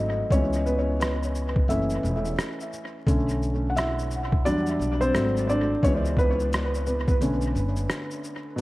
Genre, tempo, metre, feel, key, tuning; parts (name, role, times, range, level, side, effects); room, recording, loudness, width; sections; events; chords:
lo-fi hip hop; 87 BPM; 4/4; swing 61% on 16ths; B minor; A4 = 440 Hz
felt-muted upright piano; accompaniment; 0.0-8.6 s; B2 to F#5; -25 LUFS; equal; cassette tape, low-pass filter, dub echo
upright bass; bass; 0.0-8.6 s; E1 to E2; -28 LUFS; equal
boom bap sampler-style drum kit; drums; 0.3-8.6 s; hi-hat, kick drum, rim click, shaker; -27 LUFS; equal; dub echo
light reverb, studio reverb; echo-heavy mix, vinyl crackle; -22 LUFS; side -18 dB against mid
0.0-8.6 A section
felt piano solo 0.0-8.6
0.3 C#m7; 1.7 F#m7; 3.1 Bm7; 4.4 Em9; 5.1 G#7b9; 5.8 C#m7; 7.2 Bm9